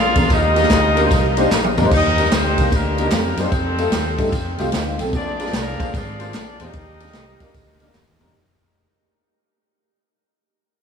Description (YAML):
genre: uptempo gospel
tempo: 149 BPM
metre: 4/4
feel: swing 65% on 8ths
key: Eb major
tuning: A4 = 440 Hz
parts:
  - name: clear horn section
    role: melody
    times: 0.0-8.0 s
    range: Bb3 to F5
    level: -21 LUFS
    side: equal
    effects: analog delay
  - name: fingered electric bass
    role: bass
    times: 0.0-8.3 s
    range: Ab1 to G2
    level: -22 LUFS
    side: equal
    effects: none
  - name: warm concert grand piano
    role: accompaniment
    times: 0.2-8.3 s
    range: Bb2 to G5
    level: -23 LUFS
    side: left 1 dB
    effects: ensemble chorus
  - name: swinging big-band drum kit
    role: drums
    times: 0.2-8.3 s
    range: crash cymbal, kick drum, ride cymbal, snare drum, toms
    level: -21 LUFS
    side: equal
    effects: none
  - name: tambourine and handclaps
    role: percussion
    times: 0.2-8.3 s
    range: none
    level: -32 LUFS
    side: right 4 dB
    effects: none
room: moderate huge ambient reverb, RT60 8.0 s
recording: dreamy mix soaked in reverb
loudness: -15 LUFS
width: side -6 dB against mid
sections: 0.0-1.9 A section; 1.9-8.3 B section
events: drum fill 1.5-1.9, 7.9-8.3; fade-out 1.9-8.3; grand piano fill 4.5-5.1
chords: 0.3 Ebmaj7; 3.5 F7; 5.1 Bb7; 6.7 Ebmaj7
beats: | 0.30 0.71 1.11 1.51 | 1.91 2.32 2.72 3.12 | 3.52 3.93 4.33 4.73 | 5.13 5.54 5.94 6.34 | 6.74 7.14 7.54 7.95